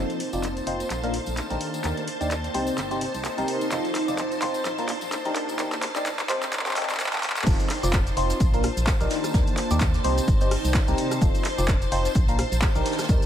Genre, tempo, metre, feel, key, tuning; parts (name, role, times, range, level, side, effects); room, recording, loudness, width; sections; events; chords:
piano house; 128 BPM; 4/4; swing 56% on 16ths; F mixolydian; A4 = 440 Hz
string machine, violins; sustained chords; 0.0-13.3 s; C5 to A5; -33 LUFS; equal; ensemble chorus, sidechain pumping
barking FM electric piano; riff; 0.0-13.3 s; Bb2 to D5; -29 LUFS; left 1 dB; phaser, vintage 12-bit sampler grit, sidechain pumping, low-pass filter, digital delay
organ-like FM bass; bass; 0.0-13.2 s; F1 to Eb2; -28 LUFS; equal; sidechain pumping
granular cloud pad; texture; 0.0-13.3 s; C4 to A5; -33 LUFS; right 1 dB; built-in reverb, sidechain pumping
punchy analog drum machine; drums; 0.1-13.3 s; crash cymbal, handclaps, hi-hat, rim click, shaker; -30 LUFS; equal
tambourine; percussion; 0.1-13.3 s; -42 LUFS; left 3 dB
electronic kick drum; drums; 7.5-13.2 s; -22 LUFS; equal
jazz brush drum kit; drums; 7.5-13.2 s; hi-hat, shaker, snare drum; -38 LUFS; right 2 dB
light reverb, small room ambience; high-pass filter; -22 LUFS; side -10 dB against mid
0.0-7.5 A section; 7.5-13.3 B section
build-up 0.0-7.5; drum fill 0.0-7.5; filter sweep on FM electric piano 0.0-7.5; filter sweep 0.0-7.5; drop 7.5-13.3
0.0 F7; 0.9 Bbmaj7; 1.6 Ebmaj7; 2.5 Cm7; 3.7 F7; 4.7 Bbmaj7; 5.4 Ebmaj7; 6.3 Cm; 7.5 F7; 8.4 Bbmaj7; 9.1 Ebmaj7; 10.0 Cm7; 11.2 F7; 12.2 Bbmaj7